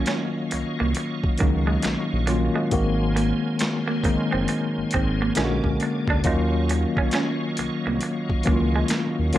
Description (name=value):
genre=R&B, neo-soul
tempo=68 BPM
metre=4/4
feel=swing 63% on 16ths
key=Eb dorian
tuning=A4 = 442 Hz
part: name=electric guitar through a small old amp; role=second line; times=0.0-9.4 s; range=Ab3 to Eb4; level=-29 LUFS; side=right 4 dB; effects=spring reverb
part: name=tine electric piano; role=accompaniment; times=0.0-9.4 s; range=D3 to Gb4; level=-24 LUFS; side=left 2 dB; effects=overdrive, fast stereo tremolo
part: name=bright tonewheel organ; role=sustained chords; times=0.0-9.4 s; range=Gb3 to D6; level=-33 LUFS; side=right 1 dB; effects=fast rotary speaker, chorus vibrato
part: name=boom bap sampler-style drum kit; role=drums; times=0.1-9.4 s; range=finger snaps, hi-hat, kick drum, snare drum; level=-26 LUFS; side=equal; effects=overdrive
part: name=smooth synth bass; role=bass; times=0.5-9.4 s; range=Gb1 to Eb2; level=-25 LUFS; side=equal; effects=none
room=moderate plate reverb, RT60 2.2 s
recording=none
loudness=-21 LUFS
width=side -13 dB against mid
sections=0.0-9.4 A section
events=none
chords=0.0 Ebm9; 2.7 Ab9; 5.4 Bb7alt; 6.2 Ebm9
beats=0.07 0.95 1.83 | 2.72 3.60 4.48 5.36 | 6.25 7.13 8.01 8.89